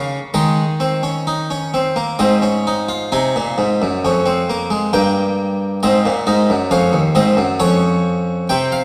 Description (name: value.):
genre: classical, baroque-style 3-part fugue for harpsichord.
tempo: 66 BPM.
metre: 3/4.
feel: straight.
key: Db major.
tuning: A4 = 442 Hz.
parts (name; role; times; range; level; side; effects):
harpsichord; solo; 0.0-8.8 s; Eb2 to Ab5; -17 LUFS; equal; none.
room: wet scoring stage reverb, RT60 1.6 s.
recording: heard from further back in the room, vinyl crackle.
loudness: -17 LUFS.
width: mono.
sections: 0.0-3.1 A section; 3.1-8.8 B section.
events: none.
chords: 0.4 Absus4/Eb; 2.2 Ab; 3.1 Db; 4.9 Gm; 5.8 Ab; 7.6 Db/F.